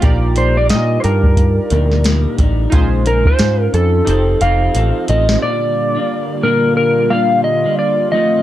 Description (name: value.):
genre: indie pop, bedroom pop.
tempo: 89 BPM.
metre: 4/4.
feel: swing 60% on 16ths.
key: Bb major.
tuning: A4 = 442 Hz.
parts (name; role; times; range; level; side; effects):
chorused retro synth keys; accompaniment; 0.0-5.4 s; Eb4 to Ab5; -24 LUFS; right 3 dB; cassette tape.
electric guitar at the edge of break-up; accompaniment; 0.0-8.4 s; Bb2 to A4; -20 LUFS; left 1 dB; wide subtle chorus, vibrato effect.
deep dub picked electric bass; bass; 0.0-5.4 s; F1 to Bb2; -15 LUFS; equal; none.
soft vintage rhythm box; drums; 0.0-5.4 s; hi-hat, kick drum, snare drum; -15 LUFS; equal; none.
electric slide guitar; melody; 0.4-8.4 s; A4 to F5; -16 LUFS; equal; lush chorus, slapback echo.
warm analog pad; sustained chords; 5.4-8.4 s; Bb2 to F4; -21 LUFS; right 1 dB; chorus.
room: light reverb.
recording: dark, warm production.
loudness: -12 LUFS.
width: side -13 dB against mid.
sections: 0.0-5.4 A section; 5.4-8.4 B section.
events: drum fill 4.1-5.4.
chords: 0.0 Ebmaj7/Bb; 2.7 Dbmaj7/Bb; 4.1 F7; 5.4 Bb6.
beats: | 0.03 0.70 1.38 2.05 | 2.73 3.40 4.07 4.75 | 5.42 6.10 6.77 7.45 | 8.12.